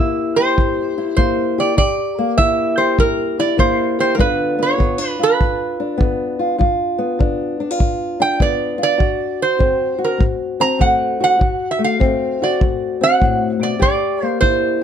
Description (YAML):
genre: acoustic country blues, solo or duo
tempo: 100 BPM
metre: 4/4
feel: swing 67% on 8ths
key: unclear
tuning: A4 = 440 Hz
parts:
  - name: metal-body resonator slide guitar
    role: melody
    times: 0.0-14.8 s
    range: Bb4 to Bb5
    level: -17 LUFS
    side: right 4 dB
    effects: none
  - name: fingerpicked old ladder-braced acoustic guitar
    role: accompaniment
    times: 0.0-14.8 s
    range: D2 to G4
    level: -19 LUFS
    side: left 4 dB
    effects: none
  - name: kick drum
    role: drums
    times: 0.6-14.6 s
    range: none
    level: -18 LUFS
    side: equal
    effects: none
room: light reverb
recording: dark, warm production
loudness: -15 LUFS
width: side -8 dB against mid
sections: 0.0-14.8 A section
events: none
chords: 0.0 C7; 4.2 G7; 9.0 D7; 13.8 C7